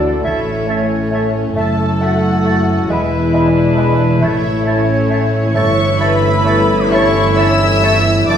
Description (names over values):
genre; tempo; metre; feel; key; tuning
classical; 45 BPM (dotted quarters); 6/8; rubato; unclear; A4 = 439 Hz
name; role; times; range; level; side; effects
dark studio violin section; melody; 0.0-8.4 s; C#5 to E6; -22 LUFS; left 1 dB; none
clear oboe; second line; 0.0-8.4 s; E4 to E5; -24 LUFS; equal; none
warm studio violin section; second line; 0.0-8.4 s; C#4 to E5; -21 LUFS; left 3 dB; none
warm studio viola section; accompaniment; 0.0-8.4 s; E3 to E4; -20 LUFS; right 1 dB; none
dark French horn section; sustained chords; 0.0-8.4 s; G#3 to F#4; -20 LUFS; left 4 dB; none
rich studio double bass section; bass; 0.0-8.4 s; E1 to D2; -19 LUFS; right 2 dB; none
warm studio cello section; bass; 0.0-8.4 s; E2 to D3; -20 LUFS; right 3 dB; none
warm clarinet; second line; 0.2-8.4 s; C#5 to E5; -27 LUFS; right 2 dB; none
warm bassoon; accompaniment; 0.2-8.4 s; G#3 to A3; -23 LUFS; left 1 dB; none
mellow flute section; second line; 0.3-8.4 s; B5 to A6; -26 LUFS; right 2 dB; none
room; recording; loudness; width
wet recital hall reverb, RT60 1.4 s; heard from further back in the room; -12 LUFS; side -8 dB against mid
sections
0.0-8.4 A section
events
none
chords
0.2 A; 2.9 E7; 4.2 A; 5.6 A7/G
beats
| 0.25 1.57 | 2.91 4.23 | 5.56 6.91 | 8.30